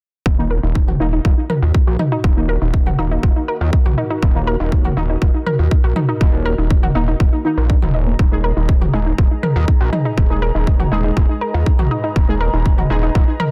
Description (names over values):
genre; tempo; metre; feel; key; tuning
melodic techno; 121 BPM; 4/4; straight; Eb minor; A4 = 444 Hz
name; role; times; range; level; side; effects
analog pluck; arpeggios; 0.3-13.5 s; Bb3 to Eb5; -26 LUFS; equal; chorus, sidechain pumping, delay
gritty driven synth bass; bass; 0.3-13.3 s; Eb1 to Eb2; -21 LUFS; equal; sidechain pumping
electronic kick drum; drums; 0.3-13.3 s; none; -17 LUFS; equal; none
warbly tape-like pad; texture; 1.6-13.5 s; Gb4 to Bb5; -32 LUFS; equal; chorus, built-in reverb, sidechain pumping
synth brass stab; stabs; 0.4-13.0 s; Eb3 to Ab4; -28 LUFS; equal; chorus, sidechain pumping, delay
electronic toms; drums; 0.9-13.5 s; none; -24 LUFS; equal; none
room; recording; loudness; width
digital ambience; dense, heavily limited modern master; -16 LUFS; mono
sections
0.3-13.5 A section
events
filter sweep on synth stab 0.3-13.5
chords
0.3 Ebm; 8.2 Abmadd9/Eb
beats
| 0.26 0.76 1.25 1.75 | 2.24 2.74 3.23 3.73 | 4.23 4.72 5.22 5.71 | 6.21 6.71 7.20 7.70 | 8.19 8.69 9.19 9.68 | 10.18 10.67 11.17 11.66 | 12.16 12.66 13.15